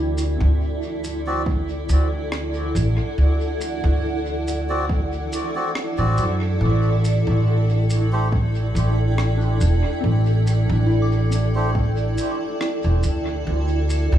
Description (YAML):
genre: ambient dub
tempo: 70 BPM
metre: 4/4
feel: swing 54% on 16ths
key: A dorian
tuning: A4 = 439 Hz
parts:
  - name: granular cloud pad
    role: sustained chords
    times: 0.0-14.2 s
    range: E4 to G5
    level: -26 LUFS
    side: right 2 dB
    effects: built-in reverb
  - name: soft synth bell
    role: arpeggios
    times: 0.0-13.5 s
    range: C4 to D6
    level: -31 LUFS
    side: left 2 dB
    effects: chorus, analog delay
  - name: upright bass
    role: bass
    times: 0.0-14.2 s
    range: E1 to F#2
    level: -19 LUFS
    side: equal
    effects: none
  - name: deep reggae drum kit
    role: drums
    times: 0.2-14.2 s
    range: rim click, shaker, toms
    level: -32 LUFS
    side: right 2 dB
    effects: dub echo
  - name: melodica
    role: stabs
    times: 1.3-11.7 s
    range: A3 to D5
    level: -30 LUFS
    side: equal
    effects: dub echo
  - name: electronic kick drum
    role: drums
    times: 1.5-11.9 s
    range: none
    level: -24 LUFS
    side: equal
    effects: overdrive
room: light reverb, small room reverb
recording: echo-heavy mix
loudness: -18 LUFS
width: side -11 dB against mid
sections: 0.0-14.2 A section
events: none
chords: 0.0 D7; 6.6 Am7; 13.5 D5